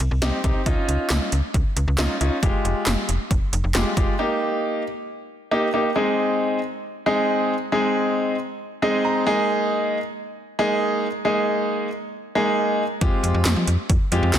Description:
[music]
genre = synth-pop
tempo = 136 BPM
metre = 4/4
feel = straight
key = Ab major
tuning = A4 = 440 Hz
[part]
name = slap-like FM bass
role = bass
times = 0.0-4.1, 13.0-14.4 s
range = F1 to F3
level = -22 LUFS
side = equal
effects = none
[part]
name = 80s electronic pad drums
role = drums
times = 0.0-4.1, 13.0-14.4 s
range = handclaps, hi-hat, kick drum, snare drum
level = -22 LUFS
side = equal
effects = none
[part]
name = clear grand piano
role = accompaniment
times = 0.2-14.4 s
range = Ab3 to Bb5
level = -21 LUFS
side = equal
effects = none
[sound]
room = moderate scoring stage reverb, RT60 1.8 s, digital ambience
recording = dense, heavily limited modern master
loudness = -20 LUFS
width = side -10 dB against mid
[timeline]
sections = 0.0-6.0 A section; 6.0-14.4 B section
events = break 4.2-6.0; grand piano fill 8.6-9.5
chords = 0.0 Cm; 0.7 Dbadd9; 2.4 Fmadd9; 4.2 Eb; 6.0 Ab; 9.3 Ebsus4; 13.0 Fmadd9

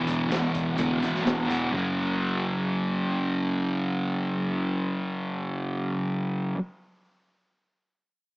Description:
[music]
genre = garage rock duo or trio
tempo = 126 BPM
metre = 4/4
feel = straight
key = unclear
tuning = A4 = 440 Hz
[part]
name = fuzz guitar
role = riff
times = 0.0-6.6 s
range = E2 to F#3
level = -25 LUFS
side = equal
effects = distortion, cassette tape
[part]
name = overdriven picked electric bass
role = bass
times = 0.1-6.5 s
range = E1 to D2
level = -37 LUFS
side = equal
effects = none
[part]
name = raw garage drum kit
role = drums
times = 0.1-1.6 s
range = hi-hat, kick drum, snare drum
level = -31 LUFS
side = equal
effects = cassette tape
[sound]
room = light reverb, small room ambience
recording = home recording on cassette, small speaker sound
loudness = -25 LUFS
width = side -26 dB against mid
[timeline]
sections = 0.0-1.7 A section; 1.7-5.6 B section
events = none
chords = 0.0 E5; 1.7 F#5

